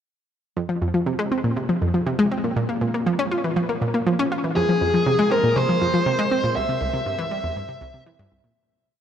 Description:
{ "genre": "ambient", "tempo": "120 BPM", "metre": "4/4", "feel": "straight", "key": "F harmonic minor", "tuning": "A4 = 440 Hz", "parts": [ { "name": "analog pluck", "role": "riff", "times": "0.6-8.5 s", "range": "C2 to F4", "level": "-21 LUFS", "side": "equal", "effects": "chorus, analog delay" }, { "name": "bluesy overdriven lead guitar", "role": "melody", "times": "4.6-8.0 s", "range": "Ab4 to E5", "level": "-22 LUFS", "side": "equal", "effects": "distortion, analog delay" } ], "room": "wet huge ambient reverb, RT60 8.2 s", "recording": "none", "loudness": "-19 LUFS", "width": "side -9 dB against mid", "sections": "0.6-8.6 A section", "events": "fade-out 5.9-8.6", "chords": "0.6 F5; 2.6 Bb5; 4.6 Fm; 6.6 C", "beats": "| 0.56 1.06 1.56 2.06 | 2.56 3.06 3.56 4.07 | 4.57 5.07 5.57 6.07 | 6.57 7.07 7.57 8.06" }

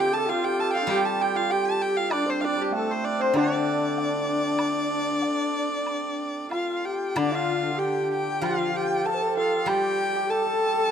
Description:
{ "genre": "chinese traditional, Chinese chamber ensemble", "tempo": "96 BPM", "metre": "4/4", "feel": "rubato", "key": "D yu mode", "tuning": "A4 = 441 Hz", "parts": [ { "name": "clear erhu", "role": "melody", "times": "0.0-10.9 s", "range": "G4 to A5", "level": "-28 LUFS", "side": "left 1 dB", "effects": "none" }, { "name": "breathy bright low xiao", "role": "second line", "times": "0.0-10.9 s", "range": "D4 to D5", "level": "-29 LUFS", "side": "left 6 dB", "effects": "none" }, { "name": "clear horsehead fiddle", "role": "second line", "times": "0.0-10.9 s", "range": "A3 to A4", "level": "-30 LUFS", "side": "right 5 dB", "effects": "none" }, { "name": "hammered dulcimer", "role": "second line", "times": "0.0-10.9 s", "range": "G3 to A4", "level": "-29 LUFS", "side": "right 5 dB", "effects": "none" }, { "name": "steel-string zither", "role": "accompaniment", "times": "0.0-10.9 s", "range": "D3 to F4", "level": "-33 LUFS", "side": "left 3 dB", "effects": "none" }, { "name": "woodblock", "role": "percussion", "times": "0.3-9.8 s", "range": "none", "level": "-35 LUFS", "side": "left 1 dB", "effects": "none" } ], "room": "light reverb", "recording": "close, detailed microphones", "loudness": "-23 LUFS", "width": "side -8 dB against mid", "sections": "0.0-7.2 A section; 7.2-10.9 B section", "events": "none", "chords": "none", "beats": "0.29 0.89 1.50 | 2.11 2.73 3.35 3.97 | 4.60 5.22 5.86 6.51 | 7.16 7.80 8.43 9.05 | 9.68 10.29 10.90" }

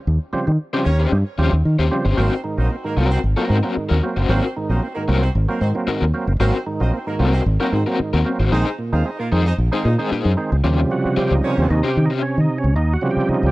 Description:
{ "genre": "funk", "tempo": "114 BPM", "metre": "4/4", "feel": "straight", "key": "unclear", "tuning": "A4 = 440 Hz", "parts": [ { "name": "fingered electric bass", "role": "bass", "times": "0.1-13.5 s", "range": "Gb1 to Eb3", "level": "-17 LUFS", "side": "equal", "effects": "none" }, { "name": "overdriven tonewheel organ", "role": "stabs", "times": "0.3-13.5 s", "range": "Ab2 to G4", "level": "-22 LUFS", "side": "right 2 dB", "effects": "chorus vibrato" }, { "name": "crunchy overdriven guitar", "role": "accompaniment", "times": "0.7-12.2 s", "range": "C4 to C5", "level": "-24 LUFS", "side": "left 4 dB", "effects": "tremolo" }, { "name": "clear horn section", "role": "second line", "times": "0.8-11.8 s", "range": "Bb3 to F5", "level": "-30 LUFS", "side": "right 2 dB", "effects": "tape echo" } ], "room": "small room ambience", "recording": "dry, close 1970s-style studio recording", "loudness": "-17 LUFS", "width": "side -19 dB against mid", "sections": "0.0-2.2 A section; 2.2-10.6 B section; 10.6-13.5 C section", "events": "tonewheel organ solo 10.6-13.5", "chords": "0.0 Eb13; 2.2 Ab9; 8.5 Bb9sus4; 10.6 Eb13", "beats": "| 0.06 0.59 1.12 1.65 | 2.18 2.71 3.24 3.76 | 4.29 4.82 5.35 5.88 | 6.41 6.94 7.46 7.99 | 8.52 9.05 9.58 10.11 | 10.64 11.17 11.70 12.22 | 12.75 13.28" }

